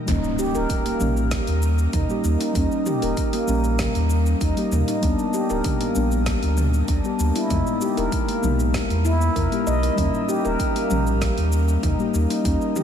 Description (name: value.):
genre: organic downtempo.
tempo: 97 BPM.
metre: 4/4.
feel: straight.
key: Eb phrygian dominant.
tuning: A4 = 438 Hz.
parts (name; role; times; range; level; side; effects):
muted felt-like synth keys; accompaniment; 0.0-12.8 s; G3 to G4; -25 LUFS; left 3 dB; chorus, sidechain pumping, analog delay, shimmer reverb.
handpan; arpeggios; 0.1-12.8 s; Bb3 to D#5; -25 LUFS; right 1 dB; analog delay, shimmer reverb.
warm sub bass; bass; 0.1-12.6 s; D1 to E2; -22 LUFS; equal; sidechain pumping.
deep house drum kit; drums; 0.1-12.8 s; hi-hat, shaker, snare drum, toms; -31 LUFS; right 1 dB; none.
electronic kick drum; drums; 0.1-12.6 s; none; -27 LUFS; equal; none.
impact; sound effects; 0.1-2.6 s; none; -34 LUFS; right 1 dB; none.
room: moderate cathedral reverb, RT60 6.8 s.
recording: dreamy mix soaked in reverb.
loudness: -19 LUFS.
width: side -8 dB against mid.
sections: 0.1-12.8 A section.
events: impact 0.1-2.6.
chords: 0.1 Eb7; 5.0 G/D; 7.5 Emaj7; 10.0 Eb7.